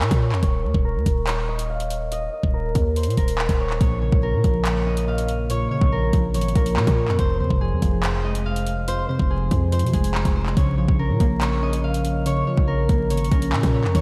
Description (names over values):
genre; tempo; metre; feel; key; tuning
hip hop, drill; 142 BPM; 4/4; half-time; Bb minor; A4 = 440 Hz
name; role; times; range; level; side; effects
concert harp; melody; 0.0-14.0 s; Ab4 to F5; -29 LUFS; equal; low-pass filter, analog delay
hard-hitting 808-style bass; bass; 0.0-14.0 s; Eb1 to C3; -25 LUFS; equal; none
drill drum kit; drums; 0.0-14.0 s; handclaps, hi-hat, kick drum; -26 LUFS; equal; none
warbly lo-fi synth keys; accompaniment; 3.8-14.0 s; F2 to Db4; -27 LUFS; equal; chorus, low-pass filter
room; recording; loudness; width
moderate lush hall reverb, RT60 1.9 s; dreamy mix soaked in reverb, vinyl crackle; -21 LUFS; mono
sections
0.0-14.0 A section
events
filter sweep 0.0-3.8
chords
0.4 Eb5; 3.8 Bbm; 7.2 Fm; 10.6 Bbm